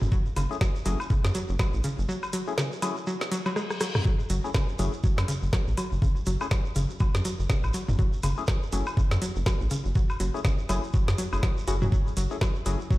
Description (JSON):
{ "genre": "minimal techno", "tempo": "122 BPM", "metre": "4/4", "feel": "swing 58% on 16ths", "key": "F# minor", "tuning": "A4 = 442 Hz", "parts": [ { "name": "rubbery square bass", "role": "bass", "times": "0.0-12.8 s", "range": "E1 to F#2", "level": "-27 LUFS", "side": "equal", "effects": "sidechain pumping" }, { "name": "electronic toms and woodblock", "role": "percussion", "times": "0.0-12.5 s", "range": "none", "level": "-34 LUFS", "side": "left 1 dB", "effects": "overdrive, dub echo" }, { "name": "shekere", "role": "percussion", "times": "0.0-13.0 s", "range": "none", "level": "-42 LUFS", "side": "right 4 dB", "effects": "none" }, { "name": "hollow square pluck", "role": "riff", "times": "0.1-13.0 s", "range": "C#3 to F#4", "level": "-32 LUFS", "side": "equal", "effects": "chorus, sidechain pumping, ping-pong delay" }, { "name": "electronic kick drum", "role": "drums", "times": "0.1-13.0 s", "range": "none", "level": "-24 LUFS", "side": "equal", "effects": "none" }, { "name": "garage drum kit", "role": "drums", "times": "0.4-12.8 s", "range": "hi-hat, rim click, snare drum", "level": "-34 LUFS", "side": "equal", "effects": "none" }, { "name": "percussive organ stab", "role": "stabs", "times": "0.5-12.8 s", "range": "A3 to G#4", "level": "-36 LUFS", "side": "left 4 dB", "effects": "chorus, dub echo" }, { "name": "reverse cymbal", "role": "sound effects", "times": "3.4-4.1 s", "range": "none", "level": "-39 LUFS", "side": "left 4 dB", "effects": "none" } ], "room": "little or no reverb", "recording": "played on a big sound system in a bare room, stone room reverb", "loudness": "-24 LUFS", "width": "side -18 dB against mid", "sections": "0.0-13.0 A section", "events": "break 2.1-4.1; reverse cymbal 3.4-4.1; drum fill 3.6-4.1", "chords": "0.0 F#m7" }